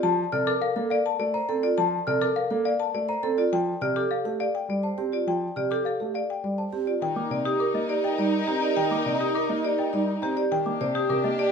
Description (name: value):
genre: classical, minimalist pattern music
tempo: 103 BPM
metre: 3/4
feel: straight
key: C dorian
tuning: A4 = 442 Hz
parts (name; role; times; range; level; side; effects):
- marimba with hard mallets; melody; 0.0-11.5 s; G4 to A5; -28 LUFS; left 7 dB; none
- warm concert grand piano; accompaniment; 0.0-11.4 s; C3 to C4; -31 LUFS; equal; none
- vibraphone with medium mallets; arpeggios; 0.0-11.5 s; Eb4 to C5; -28 LUFS; right 8 dB; none
- celesta; arpeggios; 0.3-11.4 s; Eb5 to F6; -32 LUFS; left 3 dB; none
- bright alto flute; second line; 7.0-11.5 s; Eb4 to G4; -31 LUFS; right 7 dB; none
- warm chamber string section; sustained chords; 7.0-11.5 s; D4 to Bb4; -32 LUFS; left 3 dB; none
room: moderate large studio reverb, RT60 1.2 s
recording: heard from further back in the room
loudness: -23 LUFS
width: side -6 dB against mid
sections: 0.0-7.0 A section; 7.0-11.5 B section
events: none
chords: 0.0 Bbmaj7; 3.5 Dm7; 7.0 Cm7